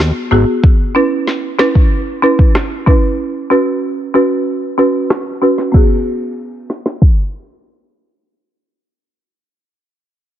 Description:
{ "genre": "dancehall", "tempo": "94 BPM", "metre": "4/4", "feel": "straight", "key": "G# minor", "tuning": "A4 = 440 Hz", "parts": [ { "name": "afro-pop drum kit", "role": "drums", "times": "0.0-7.2 s", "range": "crash cymbal, kick drum, rim click, snare drum", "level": "-12 LUFS", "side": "equal", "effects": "none" }, { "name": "folk marimba with medium mallets", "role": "accompaniment", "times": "0.3-9.8 s", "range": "B3 to B4", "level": "-14 LUFS", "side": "right 1 dB", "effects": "none" } ], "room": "digital ambience", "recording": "heavily compressed radio sound, multiband compression, low-pass filter", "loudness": "-11 LUFS", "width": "side -11 dB against mid", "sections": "0.0-5.7 A section; 5.7-8.3 B section", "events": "filter sweep 0.0-5.7", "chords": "0.0 G#m7; 0.6 C#m7; 3.2 F#sus4; 5.7 G#m7" }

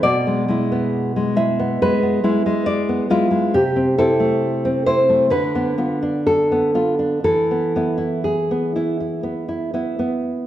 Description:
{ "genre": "romantic piece for solo classical guitar", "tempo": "59-70 BPM", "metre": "4/4", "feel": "rubato", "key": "unclear", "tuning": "A4 = 442 Hz", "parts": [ { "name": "nylon-string guitar", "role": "solo", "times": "0.0-10.5 s", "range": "B2 to E5", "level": "-17 LUFS", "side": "equal", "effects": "none" } ], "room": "wet recital hall reverb, RT60 1.7 s", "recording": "none", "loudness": "-17 LUFS", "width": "side -12 dB against mid", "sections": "0.0-10.5 A section", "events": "none", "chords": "0.0 E7/B; 3.5 Am/C; 5.3 Bdim/D; 7.2 E" }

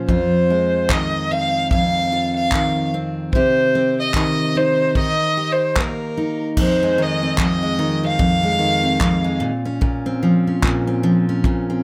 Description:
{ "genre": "acoustic pop", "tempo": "74 BPM", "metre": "4/4", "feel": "swing 60% on 16ths", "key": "F minor", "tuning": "A4 = 441 Hz", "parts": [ { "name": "picked steel-string acoustic guitar", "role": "accompaniment", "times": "0.0-11.8 s", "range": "F2 to G4", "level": "-22 LUFS", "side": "equal", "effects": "none" }, { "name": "rich violin", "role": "melody", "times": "0.1-9.4 s", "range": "Bb4 to F5", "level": "-22 LUFS", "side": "equal", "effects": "none" }, { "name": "natural country drum kit", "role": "drums", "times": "0.1-11.7 s", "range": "crash cymbal, handclaps, kick drum", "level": "-23 LUFS", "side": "equal", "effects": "none" } ], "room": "light reverb", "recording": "none", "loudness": "-19 LUFS", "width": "mono", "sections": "0.0-6.6 A section; 6.6-11.8 B section", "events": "none", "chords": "0.1 Fm7; 3.3 Cm; 5.0 Eb; 6.6 Fm7; 9.4 Bbmadd9" }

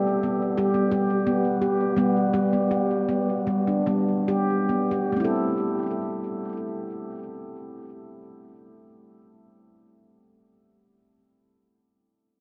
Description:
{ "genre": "world meditative, meditative tuned percussion", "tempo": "68-90 BPM", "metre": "4/4", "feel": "straight", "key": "A minor", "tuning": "A4 = 442 Hz", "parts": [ { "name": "handpan", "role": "solo", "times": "0.0-10.0 s", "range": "G3 to A4", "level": "-25 LUFS", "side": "equal", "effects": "delay" } ], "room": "wet cathedral reverb, RT60 6.4 s", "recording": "in a vast, echoing space", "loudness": "-24 LUFS", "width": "mono", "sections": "0.0-5.1 A section; 5.1-8.6 B section", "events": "slowing down 0.0-5.1", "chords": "0.0 G; 5.1 Am" }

